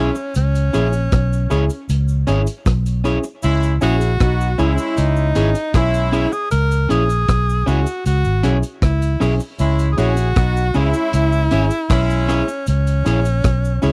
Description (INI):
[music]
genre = roots reggae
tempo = 78 BPM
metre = 4/4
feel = straight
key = C# dorian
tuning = A4 = 439 Hz
[part]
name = bright tenor saxophone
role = melody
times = 0.0-13.9 s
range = C#4 to A#4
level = -25 LUFS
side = equal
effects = none
[part]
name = warm horn section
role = second line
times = 0.0-12.4 s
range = G#3 to G#4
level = -25 LUFS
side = equal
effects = none
[part]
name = electric guitar at the edge of break-up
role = accompaniment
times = 0.0-13.9 s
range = C#4 to C#5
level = -26 LUFS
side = equal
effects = warbly pitch drift
[part]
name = percussive organ stab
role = stabs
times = 0.0-13.9 s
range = C#4 to G#4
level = -24 LUFS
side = equal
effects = chorus
[part]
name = vintage muted fingered electric bass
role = bass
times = 0.0-13.9 s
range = G#1 to C#2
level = -19 LUFS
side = equal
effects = none
[part]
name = cabasa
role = percussion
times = 0.2-13.9 s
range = none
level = -45 LUFS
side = equal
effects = none
[part]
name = vintage drum kit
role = drums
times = 0.4-13.9 s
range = hi-hat, kick drum, rim click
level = -22 LUFS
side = equal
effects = none
[sound]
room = little or no reverb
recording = dry, close 1970s-style studio recording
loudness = -17 LUFS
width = mono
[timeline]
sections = 0.0-13.9 A section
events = none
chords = 0.0 C#m